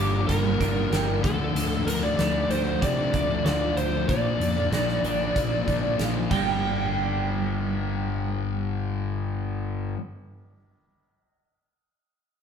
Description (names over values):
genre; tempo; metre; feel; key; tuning
quiet-loud alternative rock; 95 BPM; 4/4; straight; G minor; A4 = 440 Hz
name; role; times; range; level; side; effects
lead guitar through a small cranked amp; melody; 0.0-9.9 s; G4 to G5; -28 LUFS; right 1 dB; overdrive
clean electric guitar; arpeggios; 0.0-10.0 s; G2 to G4; -32 LUFS; right 6 dB; phaser
fuzz guitar; riff; 0.0-10.0 s; G2 to D4; -29 LUFS; left 7 dB; distortion
fuzz fingered electric bass; bass; 0.0-9.9 s; G1 to C3; -29 LUFS; equal; overdrive
huge arena drum kit; drums; 0.3-6.5 s; crash cymbal, hi-hat, kick drum, snare drum; -30 LUFS; right 1 dB; none
room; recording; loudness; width
wet large studio reverb, RT60 1.4 s; band playing live in one room; -23 LUFS; side -7 dB against mid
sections
0.0-6.6 A section; 6.6-9.2 B section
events
drum fill 6.3-6.6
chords
0.0 Gm; 1.2 Dm; 4.1 Bb; 6.3 Gm